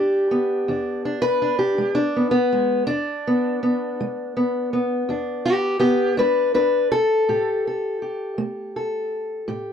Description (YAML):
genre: acoustic country blues, solo or duo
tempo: 54 BPM (dotted quarters)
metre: 12/8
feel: straight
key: unclear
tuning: A4 = 440 Hz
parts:
  - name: fingerpicked steel-string acoustic guitar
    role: solo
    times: 0.0-9.7 s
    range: E2 to B4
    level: -19 LUFS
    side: left 1 dB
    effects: none
room: light reverb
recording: dark, warm production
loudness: -19 LUFS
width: side -8 dB against mid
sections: 0.0-9.7 A section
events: none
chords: 0.0 E7; 7.3 A7(no3)